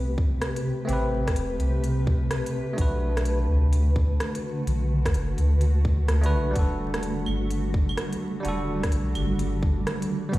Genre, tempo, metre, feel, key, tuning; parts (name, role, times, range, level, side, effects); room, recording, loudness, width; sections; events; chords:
future garage; 127 BPM; 4/4; swing 64% on 16ths; A4 = 438 Hz
bell-like tine electric piano; accompaniment; 0.0-10.4 s; G3 to B4; -31 LUFS; equal; sidechain pumping, ping-pong delay
granular cloud pad; sustained chords; 0.0-10.4 s; C3 to B4; -30 LUFS; equal; built-in reverb, sidechain pumping
soft dub sub bass; bass; 0.0-10.4 s; E1 to D2; -24 LUFS; equal
electronic kick drum; drums; 0.2-10.4 s; -23 LUFS; equal
organic electronic drum kit; drums; 0.4-10.4 s; claves, hi-hat, rim click; -33 LUFS; right 1 dB
light reverb; played on a big sound system in a bare room, stone room reverb, vinyl crackle; -22 LUFS; side -17 dB against mid
0.0-10.4 A section
0.0 Am9; 2.8 Bm7; 6.6 Em11